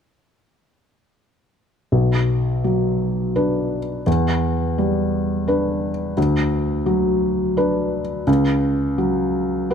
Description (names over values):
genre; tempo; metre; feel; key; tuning
classical; 85 BPM; 3/4; rubato; B minor; A4 = 440 Hz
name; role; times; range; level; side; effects
felt-muted upright piano; accompaniment; 1.9-9.7 s; B1 to B4; -18 LUFS; equal; none
room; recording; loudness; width
light reverb; close, detailed microphones; -18 LUFS; side -7 dB against mid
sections
1.9-9.7 A section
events
none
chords
1.9 Bm; 4.1 Em7; 6.2 Bm/D; 8.3 F#5/C#